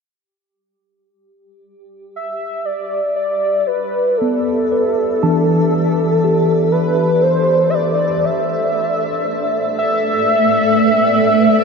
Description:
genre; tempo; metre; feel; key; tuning
ambient; 59 BPM; 4/4; straight; E minor; A4 = 441 Hz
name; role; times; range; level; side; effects
granular cloud pad; sustained chords; 1.8-11.6 s; A3 to G5; -20 LUFS; right 1 dB; built-in reverb
warm velvety synth lead; melody; 2.2-11.6 s; A4 to E5; -16 LUFS; equal; chorus, ping-pong delay
mellow tine electric piano; arpeggios; 4.2-9.1 s; E3 to A5; -18 LUFS; left 1 dB; medium stereo tremolo, ping-pong delay
room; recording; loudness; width
wet huge ambient reverb, RT60 8.4 s; in a vast, echoing space, nothing above 10.4 kHz; -14 LUFS; side -5 dB against mid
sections
0.1-11.6 A section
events
fade-in on ambient pad 0.1-11.6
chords
0.1 Em7; 4.2 A9sus4/E; 8.3 A9sus4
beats
| 0.15 1.16 2.18 3.20 | 4.21 5.23 6.25 7.27 | 8.28 9.30 10.32 11.33

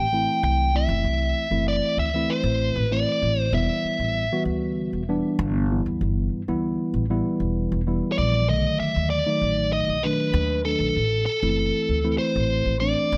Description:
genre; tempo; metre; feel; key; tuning
straight-eighth soul blues; 97 BPM; 4/4; straight; E minor; A4 = 439 Hz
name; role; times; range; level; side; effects
biting lead guitar; melody; 0.0-13.2 s; A4 to G5; -27 LUFS; equal; overdrive
mellow tine electric piano; accompaniment; 0.0-13.2 s; D3 to F#4; -28 LUFS; equal; none
upright bass; bass; 0.0-13.2 s; E1 to D#2; -28 LUFS; equal; none
room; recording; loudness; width
light reverb, small room ambience; none; -23 LUFS; mono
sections
0.0-13.2 A section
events
none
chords
0.0 Am; 3.5 Em; 8.5 B7#9; 11.0 Am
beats
0.44 | 1.06 1.68 2.30 2.92 | 3.53 4.15 4.77 5.39 | 6.01 6.63 7.25 7.87 | 8.48 9.10 9.72 10.34 | 10.96 11.58 12.20 12.81

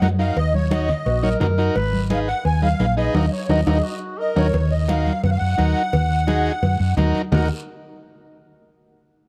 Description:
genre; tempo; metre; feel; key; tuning
latin, cumbia; 172 BPM; 4/4; straight; Eb minor; A4 = 440 Hz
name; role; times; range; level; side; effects
musette accordion; melody; 0.0-7.5 s; Db5 to Ab5; -27 LUFS; equal; none
combo organ; accompaniment; 0.0-7.5 s; Eb4 to Db5; -29 LUFS; equal; none
hollow-body short-scale fingered electric bass; bass; 0.0-7.5 s; Ab1 to Gb2; -22 LUFS; equal; none
congas; percussion; 0.0-7.4 s; none; -28 LUFS; equal; none
cowbell and timbales; percussion; 0.0-7.4 s; none; -31 LUFS; equal; none
guiro; percussion; 0.0-7.4 s; none; -45 LUFS; equal; none
warm tenor saxophone; second line; 1.1-4.5, 7.3-7.5 s; Gb4 to Cb5; -32 LUFS; equal; none
room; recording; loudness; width
light reverb; dark, warm production; -20 LUFS; mono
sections
0.0-4.5 A section; 4.5-7.3 B section; 7.3-8.7 C section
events
band accent 3.1-4.5; drum fill 3.7-4.5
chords
0.0 Ebm; 1.8 Abm; 3.1 Ebm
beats
0.02 | 0.36 0.71 1.06 1.41 | 1.76 2.10 2.45 2.80 | 3.15 3.50 3.84 4.19 | 4.54 4.89 5.24 5.58 | 5.93 6.28 6.63 6.98 | 7.33

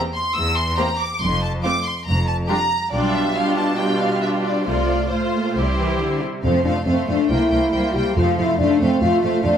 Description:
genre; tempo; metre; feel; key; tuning
quick classical-period movement for symphony orchestra; 140 BPM; 4/4; rubato; F major; A4 = 440 Hz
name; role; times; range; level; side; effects
rich studio violin section; melody; 0.1-9.6 s; Bb4 to E6; -24 LUFS; equal; none
rich studio cello section; bass; 0.4-9.6 s; E2 to A3; -26 LUFS; equal; none
rich studio violin section; second line; 0.8-9.6 s; F4 to C5; -27 LUFS; equal; none
rich studio viola section; accompaniment; 0.8-9.6 s; G3 to F4; -24 LUFS; right 1 dB; none
warm studio double bass section; bass; 1.2-9.5 s; F1 to F2; -24 LUFS; right 1 dB; none
mellow French horn section; sustained chords; 6.4-9.6 s; C4 to G4; -18 LUFS; left 1 dB; none
timpani; percussion; 6.4-8.8 s; F2; -26 LUFS; right 1 dB; none
room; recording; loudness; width
wet stone room reverb, RT60 1.0 s; none; -17 LUFS; side -8 dB against mid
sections
0.0-6.4 A section; 6.4-9.6 B section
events
none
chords
0.0 C/E; 1.2 F5; 2.1 Gm7/F (rootless); 2.9 G7/B; 4.7 F/C; 5.6 C; 6.4 F; 7.3 C7; 8.2 F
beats
0.37 0.80 | 1.22 1.65 2.08 2.50 | 2.93 3.36 3.79 4.22 | 4.67 5.12 5.56 6.00 | 6.45 6.88 7.31 7.73 | 8.16 8.59 9.02 9.44

